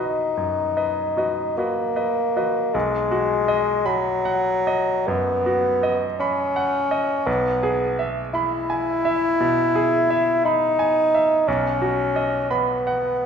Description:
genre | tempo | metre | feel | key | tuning
classical, romantic duo for bassoon and grand piano | 48-59 BPM (dotted quarters) | 12/8 | rubato | B major | A4 = 443 Hz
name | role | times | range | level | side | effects
mellow bassoon | melody | 0.0-13.3 s | F#3 to E4 | -20 LUFS | left 1 dB | none
bright grand piano | accompaniment | 0.0-13.3 s | B1 to B5 | -25 LUFS | right 2 dB | none
room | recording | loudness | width
wet recital hall reverb, RT60 1.3 s | none | -19 LUFS | side -7 dB against mid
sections
0.0-2.7 A section; 2.7-13.3 A section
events
none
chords
0.0 B; 7.3 E/B; 11.5 B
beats
0.36 1.56 | 2.74 3.85 5.07 6.19 | 7.27 8.34 9.40 10.44 | 11.47 12.50

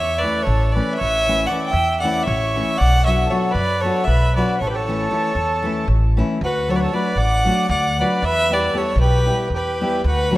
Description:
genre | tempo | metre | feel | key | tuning
balkan folk | 232 BPM (eighths) | 7/8 | straight | A mixolydian | A4 = 438 Hz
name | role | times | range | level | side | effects
rich fiddle | melody | 0.0-10.4 s | B4 to G5 | -21 LUFS | equal | none
accordion | second line | 0.0-10.4 s | F#4 to E5 | -25 LUFS | right 2 dB | none
upright bass | bass | 0.0-10.4 s | A1 to F#2 | -20 LUFS | equal | none
nylon-string guitar | accompaniment | 0.2-10.4 s | E3 to G4 | -24 LUFS | left 2 dB | none
room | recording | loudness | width
moderate lush hall reverb, RT60 2.6 s | rough home demo mix | -16 LUFS | side -17 dB against mid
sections
0.0-6.4 A section; 6.4-10.4 B section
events
none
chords
0.0 A; 2.8 Bm; 4.6 A; 6.4 D; 8.2 Em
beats
0.22 0.47 0.73 | 0.99 1.25 1.51 1.77 2.03 2.28 2.54 | 2.80 3.06 3.32 3.58 3.83 4.09 4.35 | 4.61 4.87 5.13 5.38 5.64 5.90 6.16 | 6.42 6.68 6.93 7.19 7.45 7.71 7.97 | 8.23 8.49 8.74 9.00 9.26 9.52 9.78 | 10.04 10.30

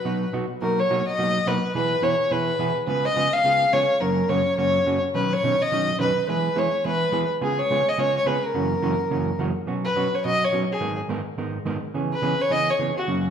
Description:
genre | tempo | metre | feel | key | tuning
country | 212 BPM | 4/4 | swing 62% on 8ths | B major | A4 = 440 Hz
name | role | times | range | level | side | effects
dark fiddle | melody | 0.0-13.2 s | F#4 to E#5 | -22 LUFS | left 1 dB | none
hollow-body jazz guitar | accompaniment | 0.0-13.3 s | F#2 to A#4 | -25 LUFS | right 2 dB | none
room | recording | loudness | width
wet large studio reverb, RT60 1.4 s | band playing live in one room | -20 LUFS | side -8 dB against mid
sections
0.6-9.7 A section; 9.7-13.3 B section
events
none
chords
0.0 B; 0.6 Bmaj7; 1.7 E/B; 2.9 C#7; 4.0 F#; 5.1 Badd9; 6.3 E; 7.4 C#7; 8.5 F#7; 9.7 Bsus2; 10.8 G#madd9; 11.9 C#m7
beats
0.05 0.33 | 0.61 0.90 1.18 1.47 | 1.75 2.03 2.31 2.60 | 2.88 3.17 3.45 3.73 | 4.01 4.30 4.58 4.86 | 5.15 5.43 5.71 6.00 | 6.28 6.56 6.84 7.13 | 7.41 7.69 7.98 8.26 | 8.54 8.82 9.11 9.39 | 9.67 9.96 10.24 10.52 | 10.81 11.09 11.37 11.65 | 11.94 12.22 12.50 12.79 | 13.07

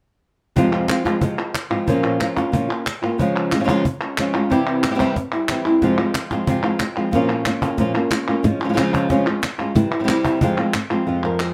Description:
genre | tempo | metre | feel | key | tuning
flamenco | 183 BPM | 4/4 | straight | F minor | A4 = 438 Hz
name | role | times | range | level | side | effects
flamenco guitar | melody | 0.6-11.5 s | F2 to Bb4 | -22 LUFS | equal | none
flamenco guitar | stabs | 0.6-11.5 s | F2 to F4 | -28 LUFS | equal | none
cajon | percussion | 0.6-10.9 s | none | -27 LUFS | equal | none
palmas hand claps | percussion | 0.7-11.5 s | none | -28 LUFS | equal | none
room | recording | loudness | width
moderate studio reverb, RT60 0.6 s | none | -20 LUFS | mono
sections
0.6-11.1 A section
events
none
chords
0.6 Fm; 1.9 Bbm; 3.2 Db; 4.5 C; 5.8 Fm; 7.1 Bbm; 8.4 Db; 9.8 C; 10.4 Fm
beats
| 0.56 0.89 1.22 1.55 | 1.88 2.21 2.53 2.86 | 3.19 3.52 3.85 4.18 | 4.50 4.83 5.16 5.49 | 5.82 6.15 6.47 6.80 | 7.13 7.46 7.79 8.12 | 8.45 8.77 9.10 9.43 | 9.76 10.09 10.41 10.74 | 11.07 11.40

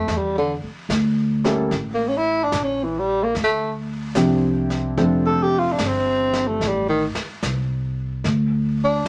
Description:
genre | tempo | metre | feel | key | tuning
jazz ballad | 74 BPM | 4/4 | swing 67% on 8ths | unclear | A4 = 437 Hz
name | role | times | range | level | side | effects
breathy tenor saxophone | melody | 0.0-9.1 s | D3 to A4 | -22 LUFS | equal | none
clear concert grand piano | accompaniment | 0.0-6.6 s | F3 to A4 | -24 LUFS | equal | none
upright bass | bass | 0.0-9.0 s | F1 to E2 | -27 LUFS | equal | none
jazz brush drum kit | drums | 0.1-9.1 s | brushed snare drum, hi-hat, snare drum | -34 LUFS | equal | none
room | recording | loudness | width
moderate studio ambience, RT60 0.5 s | none | -21 LUFS | mono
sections
0.0-9.1 A section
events
tenor saxophone solo 0.0-9.1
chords
0.1 Em7b5; 1.7 A5; 3.3 Dm11; 6.6 Am; 8.2 N.C.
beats
| 0.08 0.90 1.71 2.53 | 3.34 4.16 4.97 5.79 | 6.60 7.42 8.24 9.06

